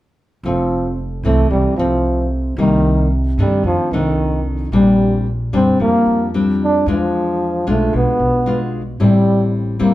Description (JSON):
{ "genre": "bossa nova", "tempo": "112 BPM", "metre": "4/4", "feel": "straight", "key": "F major", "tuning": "A4 = 439 Hz", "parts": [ { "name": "nylon-string guitar", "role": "accompaniment", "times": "0.4-9.9 s", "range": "F2 to F4", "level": "-17 LUFS", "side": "left 2 dB", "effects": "none" }, { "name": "upright bass", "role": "bass", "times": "0.4-9.9 s", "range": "F1 to G2", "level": "-21 LUFS", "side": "right 1 dB", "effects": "none" }, { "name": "mellow trombone", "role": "melody", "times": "0.5-9.9 s", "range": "Eb3 to D4", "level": "-17 LUFS", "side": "right 1 dB", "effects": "none" } ], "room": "wet large studio reverb, RT60 0.9 s", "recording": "band playing live in one room", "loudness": "-14 LUFS", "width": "side -15 dB against mid", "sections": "0.4-9.9 A section", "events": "none", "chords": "0.4 Fmaj7; 2.6 Cm7; 3.6 F6; 4.7 Bb69; 6.9 E7b9; 9.0 Am7" }